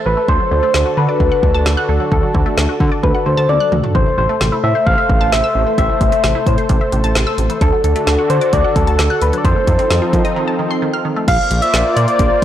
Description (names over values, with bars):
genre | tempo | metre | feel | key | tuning
synth-pop | 131 BPM | 4/4 | straight | unclear | A4 = 440 Hz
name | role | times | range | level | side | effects
warm analog pad | sustained chords | 0.0-12.4 s | D3 to E5 | -21 LUFS | equal | chorus
resonant blip pluck | arpeggios | 0.0-11.3 s | C3 to F#6 | -23 LUFS | right 1 dB | phaser, tape echo
soft struck synth lead | melody | 0.1-12.4 s | A4 to F5 | -17 LUFS | left 1 dB | chorus, phaser, tape echo
smooth synth bass | bass | 0.1-12.4 s | A1 to F3 | -17 LUFS | equal | none
deep house drum kit | drums | 0.3-12.4 s | crash cymbal, hi-hat, kick drum, snare drum, toms | -18 LUFS | equal | none
room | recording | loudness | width
light reverb, digital ambience | blown-out, overdriven recording, overdrive | -12 LUFS | side -11 dB against mid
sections
0.0-11.3 A section; 11.3-12.4 B section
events
drum fill 3.5-3.9; break 10.4-11.3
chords
0.3 D; 3.9 Am; 7.6 D; 9.4 F7; 11.3 Bbadd9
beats
| 0.28 0.74 1.20 1.66 | 2.12 2.58 3.03 3.49 | 3.95 4.41 4.87 5.32 | 5.78 6.24 6.70 7.16 | 7.61 8.07 8.53 8.99 | 9.45 9.90 10.36 10.82 | 11.28 11.74 12.19